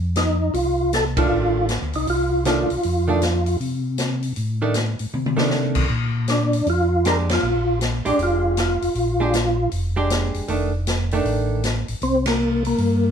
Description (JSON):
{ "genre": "soul jazz organ trio", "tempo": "157 BPM", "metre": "4/4", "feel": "swing 64% on 8ths", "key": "F mixolydian", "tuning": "A4 = 440 Hz", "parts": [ { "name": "mellow tonewheel organ", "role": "bass", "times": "0.0-13.1 s", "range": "F1 to C3", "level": "-23 LUFS", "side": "equal", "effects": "chorus vibrato, slow rotary speaker" }, { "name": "percussive tonewheel organ", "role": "melody", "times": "0.2-3.6, 6.3-9.7, 12.0-13.1 s", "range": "Bb3 to Bb4", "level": "-21 LUFS", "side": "equal", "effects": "chorus vibrato, fast rotary speaker" }, { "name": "open jazz drum kit", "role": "drums", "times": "0.2-12.9 s", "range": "crash cymbal, hi-hat, kick drum, ride cymbal, snare drum, toms", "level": "-26 LUFS", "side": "left 1 dB", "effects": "none" }, { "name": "archtop guitar, miked and amplified", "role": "accompaniment", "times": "1.2-11.6 s", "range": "Eb3 to G4", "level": "-24 LUFS", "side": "right 3 dB", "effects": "none" } ], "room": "moderate studio reverb, RT60 0.9 s", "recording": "band playing live in one room", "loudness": "-18 LUFS", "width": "side -7 dB against mid", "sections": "0.0-13.1 A section", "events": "band accent 1.1, 7.2, 12.2; drum fill 5.1-5.5", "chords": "0.0 F6; 5.9 Bb6; 10.5 F6; 12.0 C5" }